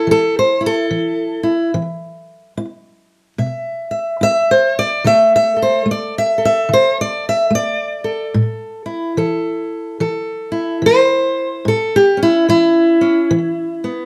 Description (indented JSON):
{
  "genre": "acoustic country blues, solo or duo",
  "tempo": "72 BPM",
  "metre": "4/4",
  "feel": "swing 62% on 8ths",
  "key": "unclear",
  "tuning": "A4 = 445 Hz",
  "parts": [
    { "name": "fingerpicked steel-string acoustic guitar", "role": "solo", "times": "0.0-14.1 s", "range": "A2 to E5", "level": "-16 LUFS", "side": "equal", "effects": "slapback echo" }
  ],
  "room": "light reverb",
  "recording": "close, detailed microphones",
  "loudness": "-16 LUFS",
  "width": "mono",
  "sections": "0.0-14.1 A section",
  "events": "steel-string acoustic guitar solo 0.0-14.1",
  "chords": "0.0 A5; 1.7 E5; 5.0 D5; 8.3 A; 13.3 E5"
}